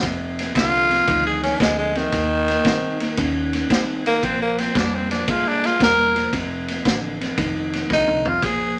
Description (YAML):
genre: electric blues shuffle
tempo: 114 BPM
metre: 4/4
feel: swing 68% on 8ths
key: unclear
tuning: A4 = 440 Hz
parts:
  - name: electric guitar through a small old amp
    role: riff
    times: 0.0-8.8 s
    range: F2 to Db4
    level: -28 LUFS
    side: equal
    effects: none
  - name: vintage muted fingered electric bass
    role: bass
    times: 0.0-8.8 s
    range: E1 to G2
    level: -35 LUFS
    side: equal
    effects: none
  - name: vintage drum kit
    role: drums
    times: 0.0-8.6 s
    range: kick drum, ride cymbal, snare drum, toms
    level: -26 LUFS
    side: equal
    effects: none
  - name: growling tenor saxophone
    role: melody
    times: 0.6-8.8 s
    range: Eb3 to Bb4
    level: -22 LUFS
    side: equal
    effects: none
room: wet small room reverb, RT60 0.5 s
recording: none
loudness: -20 LUFS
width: mono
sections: 0.0-8.4 A section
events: tenor saxophone solo 0.0-8.4; drum fill 7.9-8.4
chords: 0.0 F5; 2.1 Eb7; 4.2 Bb5; 6.3 F7